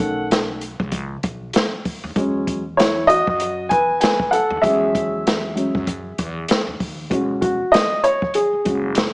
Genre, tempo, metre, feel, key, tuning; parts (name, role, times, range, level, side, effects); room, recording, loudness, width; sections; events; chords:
hip hop, jazz-hop; 97 BPM; 4/4; swing 59% on 16ths; E major; A4 = 436 Hz
dark upright piano; accompaniment; 0.0-8.9 s; D#3 to G#5; -17 LUFS; equal
upright bass; bass; 0.0-9.1 s; E1 to F#2; -32 LUFS; equal
open jazz drum kit; drums; 0.0-9.1 s; hi-hat, kick drum, snare drum; -21 LUFS; equal
light reverb, small room ambience; small speaker sound; -17 LUFS; side -28 dB against mid
0.0-7.1 A section; 7.1-9.1 B section
upright piano solo 0.0-7.1, 7.1-9.1
0.0 B9; 2.2 E6